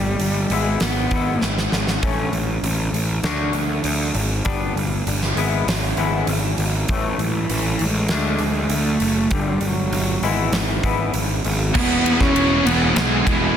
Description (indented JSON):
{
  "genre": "quiet-loud alternative rock",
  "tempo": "99 BPM",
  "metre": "4/4",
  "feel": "straight",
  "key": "E mixolydian",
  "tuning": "A4 = 440 Hz",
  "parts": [
    { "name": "dark cello", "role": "melody", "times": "0.0-1.9, 7.2-13.6 s", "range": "E3 to C#4", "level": "-23 LUFS", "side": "equal", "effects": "slapback echo" },
    { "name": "twangy electric guitar", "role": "arpeggios", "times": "0.0-11.7 s", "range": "G2 to F#4", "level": "-27 LUFS", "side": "left 6 dB", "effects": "lush chorus" },
    { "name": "fuzz picked electric bass", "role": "bass", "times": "0.0-13.5 s", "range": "E1 to E2", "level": "-22 LUFS", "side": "equal", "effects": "overdrive" },
    { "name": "huge arena drum kit", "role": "drums", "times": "0.2-13.4 s", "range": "crash cymbal, hi-hat, kick drum, ride cymbal, snare drum", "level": "-23 LUFS", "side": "equal", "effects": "soft clipping on kick, soft clipping on snare" },
    { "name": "crunchy overdriven guitar", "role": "riff", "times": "11.7-13.6 s", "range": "E2 to E3", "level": "-23 LUFS", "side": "right 3 dB", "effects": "none" },
    { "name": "high-gain distorted guitar", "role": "riff", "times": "11.7-13.6 s", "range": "E3 to G#4", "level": "-21 LUFS", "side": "equal", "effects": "distortion" }
  ],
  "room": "light reverb",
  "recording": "dense, heavily limited modern master",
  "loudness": "-18 LUFS",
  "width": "side -9 dB against mid",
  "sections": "0.0-11.8 A section; 11.8-13.6 B section",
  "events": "drum fill 1.4-2.0",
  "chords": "0.0 G5; 0.5 E/G#; 2.0 A; 3.2 D; 4.5 G; 5.4 E/G#; 6.9 A5; 8.1 D; 9.3 G5; 10.2 E/G#; 11.8 E"
}